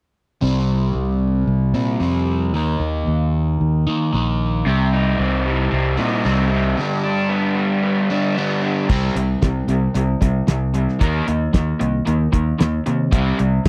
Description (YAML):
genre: classic rock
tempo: 113 BPM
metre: 4/4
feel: straight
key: C minor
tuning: A4 = 439 Hz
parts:
  - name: overdriven semi-hollow guitar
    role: riff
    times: 0.4-13.7 s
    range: G2 to Eb4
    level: -23 LUFS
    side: equal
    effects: phaser
  - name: fingered electric bass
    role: bass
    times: 0.4-13.7 s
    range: Bb1 to Eb3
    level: -22 LUFS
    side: equal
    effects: none
  - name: raw garage guitar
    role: riff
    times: 4.7-13.7 s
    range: G2 to Eb4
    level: -25 LUFS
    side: equal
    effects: overdrive
  - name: damped 70s drum kit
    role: drums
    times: 8.9-13.7 s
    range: crash cymbal, hi-hat, kick drum, snare drum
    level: -20 LUFS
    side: equal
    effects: none
room: little or no reverb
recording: dry, close 1970s-style studio recording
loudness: -19 LUFS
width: mono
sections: 0.4-8.9 A section; 8.9-13.7 B section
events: none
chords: 0.4 C5; 2.5 Eb5; 4.7 Cm; 6.8 G; 8.9 C5; 11.0 Eb5; 13.1 C5